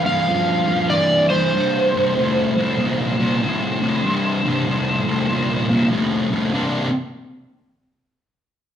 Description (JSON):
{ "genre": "rock", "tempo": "96 BPM", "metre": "4/4", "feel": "swing 65% on 8ths", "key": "unclear", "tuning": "A4 = 440 Hz", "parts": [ { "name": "overdriven slide guitar", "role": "melody", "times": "0.0-5.9 s", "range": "C5 to F5", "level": "-21 LUFS", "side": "right 2 dB", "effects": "none" }, { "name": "thick fuzz guitar", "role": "riff", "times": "0.0-6.9 s", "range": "C2 to D4", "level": "-19 LUFS", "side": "left 1 dB", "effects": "distortion" } ], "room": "wet large studio reverb, RT60 1.1 s", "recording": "band playing live in one room", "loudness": "-17 LUFS", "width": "side -9 dB against mid", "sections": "0.0-6.5 A section; 6.5-8.8 B section", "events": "none", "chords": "0.0 G5; 1.5 C5; 6.5 Csus2" }